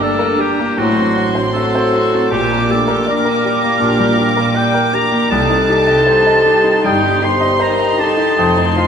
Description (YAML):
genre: classical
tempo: 78 BPM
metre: 4/4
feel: rubato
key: unclear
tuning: A4 = 440 Hz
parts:
  - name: clear grand piano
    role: melody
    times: 0.0-8.9 s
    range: C2 to Eb5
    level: -18 LUFS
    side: left 2 dB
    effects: none
  - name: warm chamber violin section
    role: melody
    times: 0.0-8.9 s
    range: Bb5 to D6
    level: -26 LUFS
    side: left 2 dB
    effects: none
  - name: clear clarinet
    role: second line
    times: 0.0-8.9 s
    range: F#4 to C6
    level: -21 LUFS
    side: left 3 dB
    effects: none
  - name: clear oboe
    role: second line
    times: 0.0-8.9 s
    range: F#4 to C6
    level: -20 LUFS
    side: right 1 dB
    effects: none
  - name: mellow large flute ensemble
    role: second line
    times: 0.0-8.7 s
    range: C6 to Eb6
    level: -23 LUFS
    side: right 2 dB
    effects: none
  - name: warm chamber violin section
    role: second line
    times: 0.0-8.9 s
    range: G3 to G4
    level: -25 LUFS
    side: left 1 dB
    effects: none
  - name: dark symphonic viola section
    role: accompaniment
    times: 0.0-8.9 s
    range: Bb3 to Eb4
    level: -24 LUFS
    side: right 3 dB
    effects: none
  - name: warm bassoon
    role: accompaniment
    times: 0.0-8.7 s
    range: F#3 to C4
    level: -25 LUFS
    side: right 2 dB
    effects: none
  - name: mellow French horn section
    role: sustained chords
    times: 0.0-8.9 s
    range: F#3 to C5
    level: -19 LUFS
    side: left 1 dB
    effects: none
  - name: bright trombone section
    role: sustained chords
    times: 0.8-8.9 s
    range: F3 to Eb4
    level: -24 LUFS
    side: right 3 dB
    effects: none
  - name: dark chamber cello section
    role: bass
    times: 0.8-8.9 s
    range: F2 to C3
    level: -25 LUFS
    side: right 3 dB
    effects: none
  - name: warm chamber double bass section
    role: bass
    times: 0.8-8.9 s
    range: F1 to C2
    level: -26 LUFS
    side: right 3 dB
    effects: none
room: wet recital hall reverb, RT60 1.3 s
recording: minimal, uncompressed stereo recording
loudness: -12 LUFS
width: side -7 dB against mid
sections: 0.0-8.9 A section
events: none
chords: 0.0 Gm; 0.8 F#dim/A; 2.3 Gm/Bb; 5.3 Cm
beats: 0.00 0.77 1.54 | 2.31 3.06 3.80 4.55 | 5.31 6.07 6.84 7.61 | 8.38